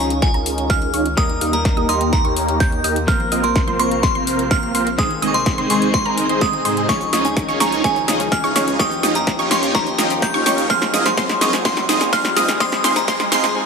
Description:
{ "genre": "EDM, festival progressive house", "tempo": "126 BPM", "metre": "4/4", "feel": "straight", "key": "Ab major", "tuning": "A4 = 440 Hz", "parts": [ { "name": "glassy synth bell", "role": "melody", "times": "0.0-13.6 s", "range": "Ab5 to G6", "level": "-21 LUFS", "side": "equal", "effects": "chorus, phaser, tape echo" }, { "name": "direct-recorded clean electric guitar", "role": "accompaniment", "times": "0.0-13.7 s", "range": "Eb3 to Bb4", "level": "-28 LUFS", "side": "left 4 dB", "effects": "spring reverb, sidechain pumping, tape echo" }, { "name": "lush unison pad", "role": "sustained chords", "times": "0.0-13.5 s", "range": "C3 to G4", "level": "-30 LUFS", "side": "right 1 dB", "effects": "chorus, sidechain pumping" }, { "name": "wide unison pluck", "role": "arpeggios", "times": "0.0-13.5 s", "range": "Bb5 to F6", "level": "-25 LUFS", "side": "right 3 dB", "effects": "auto-pan, sidechain pumping, tape echo" }, { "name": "big supersaw lead", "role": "riff", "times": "0.0-13.5 s", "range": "Ab3 to F5", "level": "-21 LUFS", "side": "right 1 dB", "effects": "phaser, sidechain pumping, low-pass filter, tape echo" }, { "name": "saturated sub bass", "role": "bass", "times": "0.0-13.5 s", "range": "Ab1 to Ab2", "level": "-31 LUFS", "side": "equal", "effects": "sidechain pumping" }, { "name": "riser", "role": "sound effects", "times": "3.9-13.6 s", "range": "none", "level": "-31 LUFS", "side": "equal", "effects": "none" }, { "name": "big-room dance drum kit", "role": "drums", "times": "0.1-13.5 s", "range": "hi-hat, shaker, snare drum", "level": "-23 LUFS", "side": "equal", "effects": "small room reverb" }, { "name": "electronic kick drum", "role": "drums", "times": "0.2-13.2 s", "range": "none", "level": "-20 LUFS", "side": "equal", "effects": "small room reverb" } ], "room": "moderate huge ambient reverb, RT60 5.2 s", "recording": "high-pass filter", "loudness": "-15 LUFS", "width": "side -5 dB against mid", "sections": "0.0-13.7 A section", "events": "build-up 0.0-13.7; drum fill 0.0-13.6; filter sweep on supersaw synth 0.0-13.7; filter sweep 0.0-13.7; riser 3.9-13.6", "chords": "0.0 Dbadd9; 1.2 Eb; 3.1 Bbsus2; 5.0 Ab; 6.9 Dbadd9; 8.8 Eb; 10.7 Bbsus2; 12.6 Ab" }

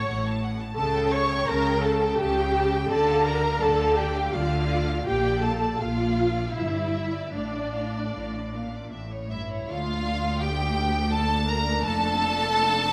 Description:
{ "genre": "classical, slow romantic movement for string orchestra", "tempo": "74-87 BPM", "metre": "3/4", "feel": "rubato", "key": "D minor", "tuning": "A4 = 440 Hz", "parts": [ { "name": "rich studio violin section", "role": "melody", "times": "0.0-12.9 s", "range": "C#5 to Bb5", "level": "-34 LUFS", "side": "equal", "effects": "none" }, { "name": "warm studio violin section", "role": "second line", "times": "0.0-12.9 s", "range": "E4 to C#6", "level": "-32 LUFS", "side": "equal", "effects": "none" }, { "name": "warm studio viola section", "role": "accompaniment", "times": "0.0-12.9 s", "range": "A3 to C#5", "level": "-30 LUFS", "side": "equal", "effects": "none" }, { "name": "rich studio cello section", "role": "bass", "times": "0.1-12.9 s", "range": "D2 to D3", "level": "-32 LUFS", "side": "equal", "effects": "none" }, { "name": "warm studio double bass section", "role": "bass", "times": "0.1-12.9 s", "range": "F1 to D2", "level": "-34 LUFS", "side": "equal", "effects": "none" } ], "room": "moderate concert hall reverb, RT60 1.8 s", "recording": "none", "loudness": "-25 LUFS", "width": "mono", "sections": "0.0-9.7 A section; 9.7-12.9 B section", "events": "none", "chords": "0.0 F#m/A; 0.8 A7/C#; 2.9 Dm; 5.1 Bb; 6.5 Em7/G; 7.3 Dm/A; 8.9 A; 9.7 Dm; 11.8 Dm/F" }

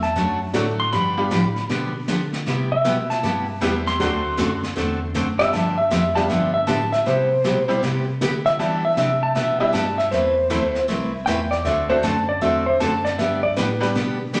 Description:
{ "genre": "country, western swing", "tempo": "157 BPM", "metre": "4/4", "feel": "swing 64% on 8ths", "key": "C major", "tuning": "A4 = 442 Hz", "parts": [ { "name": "clean lap steel guitar", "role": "second line", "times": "0.0-13.8 s", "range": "B4 to C6", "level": "-23 LUFS", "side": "equal", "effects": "none" }, { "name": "bell-like tine electric piano", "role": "bass", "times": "0.0-14.4 s", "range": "C2 to E3", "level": "-30 LUFS", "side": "equal", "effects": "none" }, { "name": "jazz brush drum kit", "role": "drums", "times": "0.0-14.4 s", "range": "brushed snare drum, hi-hat, snare drum", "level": "-33 LUFS", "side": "equal", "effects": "none" }, { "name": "picked steel-string acoustic guitar", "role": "accompaniment", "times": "0.2-14.4 s", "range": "C3 to B4", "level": "-27 LUFS", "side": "equal", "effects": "none" }, { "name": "tack piano", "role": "accompaniment", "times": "0.5-1.3, 3.6-13.9 s", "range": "F#3 to B4", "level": "-29 LUFS", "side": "equal", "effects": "none" } ], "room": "wet large studio reverb, RT60 1.2 s", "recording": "none", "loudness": "-21 LUFS", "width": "mono", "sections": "0.0-14.4 A section", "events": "electric slide guitar solo 0.0-14.4", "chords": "0.0 D; 0.9 G7; 2.5 Cmaj7; 4.0 D7; 5.5 G7; 7.1 Cmaj7; 8.6 Em7; 10.1 Amadd9; 11.7 D7; 13.2 G" }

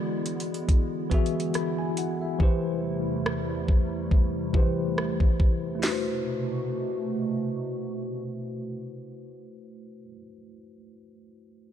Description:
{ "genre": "contemporary R&B", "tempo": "70 BPM", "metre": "4/4", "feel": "swing 54% on 16ths", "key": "A dorian", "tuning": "A4 = 440 Hz", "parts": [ { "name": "bell-like tine electric piano", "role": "accompaniment", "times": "0.0-11.7 s", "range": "E3 to B5", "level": "-31 LUFS", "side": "left 2 dB", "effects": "medium stereo tremolo, low-pass filter" }, { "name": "hollow soft pad", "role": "sustained chords", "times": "0.0-10.0 s", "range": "E2 to F#4", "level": "-33 LUFS", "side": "right 2 dB", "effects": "ensemble chorus, sidechain pumping, low-pass filter" }, { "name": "trap drum kit", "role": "drums", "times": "0.3-6.0 s", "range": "hi-hat, kick drum, rim click, snare drum", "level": "-24 LUFS", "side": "equal", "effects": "none" } ], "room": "light reverb, digital ambience", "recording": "dark, warm production", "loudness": "-25 LUFS", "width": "side -10 dB against mid", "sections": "0.0-5.8 A section; 5.8-9.3 B section", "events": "filter sweep 0.0-5.8", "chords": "0.0 E7; 2.4 Am7/E; 5.8 Am69" }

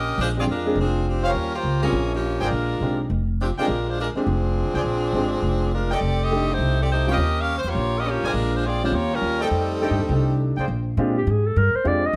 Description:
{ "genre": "jazz, big band swing", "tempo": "206 BPM", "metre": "4/4", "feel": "swing 63% on 8ths", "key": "Bb mixolydian", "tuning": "A4 = 441 Hz", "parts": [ { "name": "edgy saxophone section", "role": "melody", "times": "0.0-10.4 s", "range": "F3 to F5", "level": "-27 LUFS", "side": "equal", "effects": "plate reverb" }, { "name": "upright bass", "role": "bass", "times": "0.0-12.2 s", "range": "F1 to Bb2", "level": "-26 LUFS", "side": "equal", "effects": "none" }, { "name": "clear concert grand piano", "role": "accompaniment", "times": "0.4-12.0 s", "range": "G3 to D5", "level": "-28 LUFS", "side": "equal", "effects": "none" }, { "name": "clear trumpet section", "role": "stabs", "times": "1.2-10.7 s", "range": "Bb3 to Ab5", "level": "-31 LUFS", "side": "equal", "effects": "none" }, { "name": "mellow clarinet", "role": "melody", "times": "11.2-12.2 s", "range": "G4 to Eb5", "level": "-24 LUFS", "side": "equal", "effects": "plate reverb" } ], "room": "moderate large studio reverb, RT60 1.0 s", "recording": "none", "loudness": "-22 LUFS", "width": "mono", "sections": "0.0-10.7 A section; 10.7-12.2 B section", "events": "clarinet solo 10.7-12.2", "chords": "0.2 Bb13; 1.3 Eb13; 2.5 Bb13; 6.0 F13; 7.2 Eb9; 8.4 Bb13; 8.9 Eb9; 9.5 F13; 10.7 Bb13" }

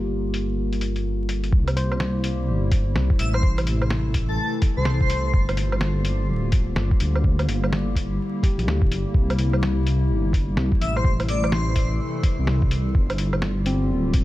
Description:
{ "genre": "future garage", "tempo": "126 BPM", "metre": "4/4", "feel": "swing 62% on 16ths", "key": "G dorian", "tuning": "A4 = 439 Hz", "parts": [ { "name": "mellow tine electric piano", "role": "accompaniment", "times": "0.0-5.5, 8.4-9.3, 13.7-14.2 s", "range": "C4 to C5", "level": "-34 LUFS", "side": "left 1 dB", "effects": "vintage 12-bit sampler grit, sidechain pumping, tape echo" }, { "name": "warbly tape-like pad", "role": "sustained chords", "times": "0.0-14.2 s", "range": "C3 to A4", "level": "-29 LUFS", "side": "left 1 dB", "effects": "chorus, built-in reverb, sidechain pumping" }, { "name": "dark detuned saw bass", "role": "bass", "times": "0.0-14.2 s", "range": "D1 to D2", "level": "-23 LUFS", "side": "equal", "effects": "tube saturation, sidechain pumping" }, { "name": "lo-fi sampler-style drum kit", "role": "drums", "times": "0.3-14.2 s", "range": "hi-hat, snare drum, woodblock", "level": "-29 LUFS", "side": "equal", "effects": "vintage 12-bit sampler grit, studio reverb" }, { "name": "electronic kick drum", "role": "drums", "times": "1.5-14.2 s", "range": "none", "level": "-20 LUFS", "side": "equal", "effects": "vintage 12-bit sampler grit, studio reverb" }, { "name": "airy dreamy lead", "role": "melody", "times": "3.2-5.4, 10.8-11.9 s", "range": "A4 to E5", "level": "-31 LUFS", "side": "left 1 dB", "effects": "chorus, phaser, tape echo" } ], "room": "digital ambience", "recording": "vinyl crackle, low-pass filter", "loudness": "-20 LUFS", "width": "side -16 dB against mid", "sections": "0.0-1.5 A section; 1.5-14.2 B section", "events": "none", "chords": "0.0 Gm7; 1.5 C7; 3.4 Am; 5.3 Gm7; 9.1 C7; 11.1 Am; 13.0 G5" }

